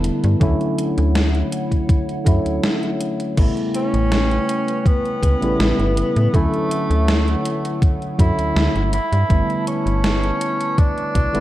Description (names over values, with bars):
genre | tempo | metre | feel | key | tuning
vaporwave | 81 BPM | 4/4 | straight | D major | A4 = 440 Hz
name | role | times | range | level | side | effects
tine electric piano | accompaniment | 0.0-11.4 s | C#3 to E4 | -22 LUFS | equal | lush chorus, analog delay
warbly tape-like pad | sustained chords | 0.0-11.4 s | C#4 to A5 | -31 LUFS | equal | chorus, built-in reverb
slap-like FM bass | bass | 0.0-11.4 s | E1 to A2 | -19 LUFS | equal | none
gated 80s digital drum machine | drums | 0.0-11.4 s | crash cymbal, hi-hat, snare drum | -24 LUFS | equal | gated reverb, gated reverb snare, overdrive
electronic kick drum | drums | 0.4-11.3 s | none | -17 LUFS | equal | overdrive
mellow tenor saxophone | melody | 3.8-11.4 s | A3 to E4 | -23 LUFS | right 1 dB | tape echo
room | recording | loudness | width
light reverb | dark, warm production | -16 LUFS | side -14 dB against mid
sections
0.0-11.4 A section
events
break 2.6-3.4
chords
0.4 Dmaj9; 3.4 A9; 6.3 Dmaj9; 8.9 G69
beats
| 0.41 1.16 1.90 2.64 | 3.38 4.12 4.86 5.60 | 6.34 7.08 7.82 8.56 | 9.30 10.04 10.78